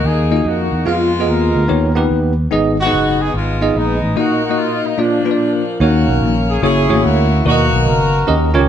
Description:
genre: uptempo gospel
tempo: 146 BPM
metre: 4/4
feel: swing 66% on 8ths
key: Eb harmonic minor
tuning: A4 = 440 Hz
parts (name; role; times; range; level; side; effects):
- warm horn section; melody; 0.0-8.6 s; F3 to A#4; -18 LUFS; left 2 dB; none
- picked electric bass; bass; 0.0-8.7 s; Gb1 to F2; -16 LUFS; equal; none
- bell-like tine electric piano; accompaniment; 0.3-8.7 s; Ab2 to F5; -16 LUFS; equal; medium stereo tremolo
room: moderate stone room reverb, RT60 1.1 s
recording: band playing live in one room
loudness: -13 LUFS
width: side -9 dB against mid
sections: 0.0-5.8 A section; 5.8-8.7 B section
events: none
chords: 0.0 Ebm; 0.9 Fdim; 1.7 Eb7b13; 2.5 Abm; 4.2 Ebm/Bb; 5.0 Bb; 5.8 Ebm7; 6.6 Gb7; 7.5 Bmaj7

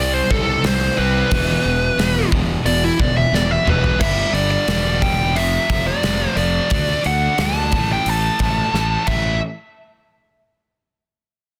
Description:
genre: hard rock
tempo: 89 BPM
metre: 4/4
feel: straight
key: A minor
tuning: A4 = 440 Hz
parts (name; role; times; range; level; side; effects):
- high-gain lead guitar; melody; 0.0-9.4 s; E4 to A5; -22 LUFS; equal; distortion, slapback echo
- high-gain distorted guitar; riff; 0.0-9.4 s; E2 to D4; -30 LUFS; equal; distortion
- scooped high-gain guitar; riff; 0.0-9.4 s; E2 to D4; -29 LUFS; equal; distortion
- sludgy distorted guitar; riff; 0.0-4.0 s; E2 to C4; -28 LUFS; equal; overdrive
- fuzz fingered electric bass; bass; 0.0-9.4 s; E1 to D2; -24 LUFS; equal; overdrive
- gated 80s drum kit; drums; 0.3-9.2 s; crash cymbal, hi-hat, kick drum, snare drum, toms; -24 LUFS; equal; none
room: studio reverb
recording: dense, heavily limited modern master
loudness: -18 LUFS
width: mono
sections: 0.0-4.0 A section; 4.0-9.4 B section; 9.4-11.6 C section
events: lead electric guitar solo 0.0-4.0; drum fill 3.3-4.0, 8.7-9.4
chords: 0.0 C5; 1.3 E5; 4.0 G5; 5.4 F5; 6.7 D5; 7.7 A5; 9.4 N.C.

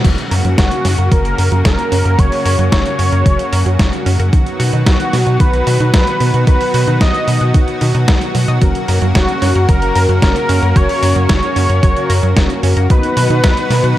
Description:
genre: italo disco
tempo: 112 BPM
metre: 4/4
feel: straight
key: F# major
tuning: A4 = 441 Hz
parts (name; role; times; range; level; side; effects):
- lush unison pad; sustained chords; 0.0-14.0 s; C#3 to F#4; -20 LUFS; equal; chorus
- analog pluck; arpeggios; 0.0-13.9 s; D#3 to D#5; -24 LUFS; right 4 dB; chorus, tape echo
- round analog bass; bass; 0.0-13.9 s; F#1 to B2; -15 LUFS; equal; tube saturation
- dusty soul sampler-style drum kit; drums; 0.0-13.9 s; crash cymbal, hi-hat, snare drum; -20 LUFS; equal; overdrive, studio reverb
- electronic kick drum; drums; 0.0-13.5 s; none; -12 LUFS; equal; overdrive, studio reverb
- wide unison lead; melody; 0.6-14.0 s; F#4 to D#5; -18 LUFS; equal; cassette tape, tape echo
- analog synth brass; stabs; 8.6-14.0 s; A#3 to B4; -21 LUFS; left 2 dB; chorus
room: light reverb, digital ambience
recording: dark, warm production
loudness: -11 LUFS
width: side -14 dB against mid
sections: 0.0-14.0 A section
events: band accent 0.0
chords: 0.0 F#; 4.3 B; 8.6 F#; 12.9 B

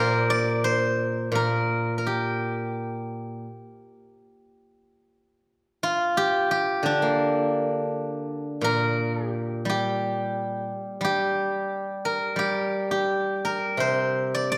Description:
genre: chinese traditional, Chinese solo plucked strings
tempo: 83-91 BPM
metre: 2/4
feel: rubato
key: unclear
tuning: A4 = 440 Hz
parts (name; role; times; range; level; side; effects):
- steel-string zither; solo; 0.0-14.6 s; Bb2 to Bb5; -26 LUFS; equal; none
room: moderate recital hall reverb, RT60 1.5 s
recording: none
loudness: -26 LUFS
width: mono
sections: 0.0-8.3 A section; 8.3-14.6 B section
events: none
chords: none

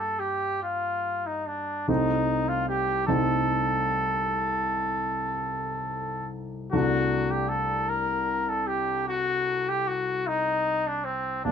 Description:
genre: classical, romantic duo for trumpet and grand piano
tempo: 47-52 BPM (dotted quarters)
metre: 12/8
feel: rubato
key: unclear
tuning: A4 = 439 Hz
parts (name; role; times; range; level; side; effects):
- clear trumpet; melody; 0.0-11.5 s; C4 to Bb4; -26 LUFS; left 1 dB; none
- warm grand piano; accompaniment; 0.0-11.5 s; Bb1 to G4; -29 LUFS; equal; none
room: light reverb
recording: minimal, uncompressed stereo recording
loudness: -24 LUFS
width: side -7 dB against mid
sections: 0.0-11.5 A section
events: none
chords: 0.0 Gm; 1.9 Adim/C; 6.7 D5/C

